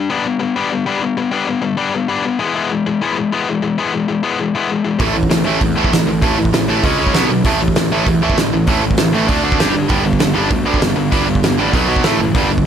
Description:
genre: punk rock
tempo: 196 BPM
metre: 4/4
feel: straight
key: A mixolydian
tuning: A4 = 440 Hz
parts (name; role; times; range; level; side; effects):
- tight distorted guitar; riff; 0.0-12.6 s; G2 to G4; -17 LUFS; left 5 dB; distortion
- distorted electric guitar; riff; 5.0-12.7 s; G2 to D4; -19 LUFS; right 16 dB; overdrive
- fuzz picked electric bass; bass; 5.0-12.6 s; F#1 to E2; -21 LUFS; right 2 dB; overdrive
- loose indie drum kit; drums; 5.0-12.7 s; hi-hat, kick drum, snare drum; -17 LUFS; right 1 dB; none
room: little or no reverb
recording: none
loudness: -13 LUFS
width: side -8 dB against mid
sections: 0.0-12.7 A section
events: none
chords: 0.1 G; 2.4 E; 5.0 A5; 6.8 C#5; 7.2 B5; 7.5 A5; 9.3 D5; 9.6 G5; 9.9 G; 11.7 B5; 12.0 A5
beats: | 0.11 0.41 0.72 1.03 | 1.33 1.64 1.94 2.25 | 2.56 2.86 3.17 3.47 | 3.78 4.09 4.39 4.70 | 5.00 5.31 5.62 5.92 | 6.23 6.54 6.84 7.15 | 7.46 7.76 8.07 8.38 | 8.68 8.99 9.29 9.60 | 9.91 10.21 10.52 10.82 | 11.13 11.44 11.74 12.05 | 12.35

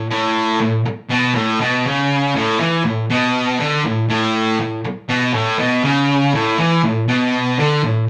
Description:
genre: rock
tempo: 120 BPM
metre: 4/4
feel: straight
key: A major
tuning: A4 = 444 Hz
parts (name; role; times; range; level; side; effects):
- fuzz guitar; solo; 0.0-8.0 s; A2 to E3; -17 LUFS; equal; distortion
room: moderate studio reverb, RT60 0.7 s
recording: rough rehearsal-room recording, tube saturation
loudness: -17 LUFS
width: mono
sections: 0.0-8.1 A section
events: none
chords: none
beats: | 0.11 0.61 1.11 1.61 | 2.10 2.60 3.10 3.60 | 4.10 4.60 5.10 5.60 | 6.09 6.59 7.09 7.59

